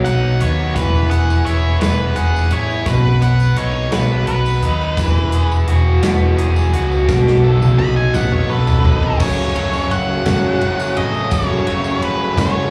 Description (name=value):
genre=indie rock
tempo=57 BPM (dotted quarters)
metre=6/8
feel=straight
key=E major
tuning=A4 = 440 Hz
part: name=octave-fuzz lead guitar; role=melody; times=0.0-12.7 s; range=B4 to B5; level=-25 LUFS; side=equal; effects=distortion, slapback echo, analog delay
part: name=raw garage guitar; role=riff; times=0.0-12.7 s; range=F#2 to B4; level=-22 LUFS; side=equal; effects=overdrive, slapback echo
part: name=growling fingered electric bass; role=bass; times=0.0-12.7 s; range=E1 to D#2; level=-19 LUFS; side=equal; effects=overdrive
part: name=big rock drum kit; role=drums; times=0.1-12.5 s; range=crash cymbal, hi-hat, kick drum, ride cymbal, snare drum, toms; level=-23 LUFS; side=equal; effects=none
part: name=tambourine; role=percussion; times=0.8-12.5 s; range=none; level=-40 LUFS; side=equal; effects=none
part: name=glassy synth bell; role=second line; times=9.2-12.7 s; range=B5 to F#6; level=-36 LUFS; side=equal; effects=none
room=light reverb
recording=live gig heard through the venue's PA, club reverb, small room reverb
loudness=-16 LUFS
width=mono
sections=0.0-9.2 A section; 9.2-12.7 B section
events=lead electric guitar solo 0.0-9.2; drum fill 7.1-9.2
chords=0.0 B; 0.8 E; 2.9 B; 5.0 Eadd9; 7.1 B7; 9.2 F#m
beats=| 0.76 1.81 | 2.87 3.92 | 4.98 6.04 | 7.09 8.15 | 9.20 10.26 | 11.32 12.38